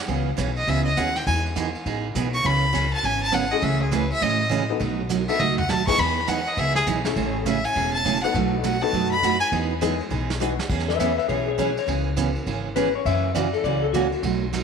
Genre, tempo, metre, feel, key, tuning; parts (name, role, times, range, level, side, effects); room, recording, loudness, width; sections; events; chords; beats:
country, western swing; 203 BPM; 4/4; swing 63% on 8ths; E major; A4 = 440 Hz
picked steel-string acoustic guitar; accompaniment; 0.1-14.6 s; B2 to G#4; -26 LUFS; right 9 dB
upright bass; bass; 0.1-14.6 s; E1 to A2; -27 LUFS; left 2 dB
vintage brush drum kit; drums; 0.1-14.6 s; crash cymbal, hi-hat, kick drum, ride cymbal, snare drum, toms; -31 LUFS; right 3 dB
clear fiddle; melody; 0.6-9.5 s; G#4 to C#6; -24 LUFS; left 1 dB
honky-tonk upright piano; accompaniment; 3.5-10.6 s; G#3 to A4; -28 LUFS; left 14 dB
clean lap steel guitar; second line; 10.9-14.2 s; F#4 to E5; -24 LUFS; left 10 dB
moderate echo chamber reverb, RT60 2.0 s; 1960s-style stereo with parts hard left and right; -20 LUFS; side -6 dB against mid
0.0-10.7 A section; 10.7-14.6 A section
fiddle solo 0.0-10.7; drum fill 5.4, 10.4; electric slide guitar solo 10.7-14.6
0.1 C#m7; 1.3 Emaj7; 2.4 C#m7; 3.6 Amaj7/C#; 4.8 B7; 6.0 Emaj7; 7.2 Amaj7; 8.3 B7; 9.5 Emaj7; 10.7 E6; 11.9 C#m7; 13.1 F#7
| 0.09 0.38 0.68 0.97 | 1.27 1.56 1.86 2.15 | 2.45 2.74 3.04 3.33 | 3.63 3.92 4.22 4.51 | 4.81 5.10 5.40 5.69 | 5.99 6.28 6.58 6.87 | 7.17 7.46 7.75 8.05 | 8.34 8.64 8.93 9.23 | 9.52 9.82 10.11 10.41 | 10.70 10.99 11.29 11.59 | 11.88 12.18 12.47 12.77 | 13.06 13.36 13.65 13.95 | 14.24 14.54